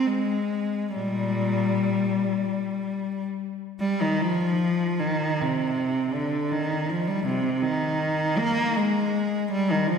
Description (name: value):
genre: classical, free, expressive piece for unaccompanied cello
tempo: 31-56 BPM (dotted quarters)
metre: 6/8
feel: rubato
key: Eb major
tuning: A4 = 439 Hz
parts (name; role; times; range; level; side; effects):
- rich cello; solo; 0.0-10.0 s; Bb2 to Bb3; -23 LUFS; left 1 dB; none
room: wet concert hall reverb, RT60 2.3 s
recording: heard from further back in the room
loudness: -23 LUFS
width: side -6 dB against mid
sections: 0.0-3.8 A section; 3.8-10.0 B section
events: none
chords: none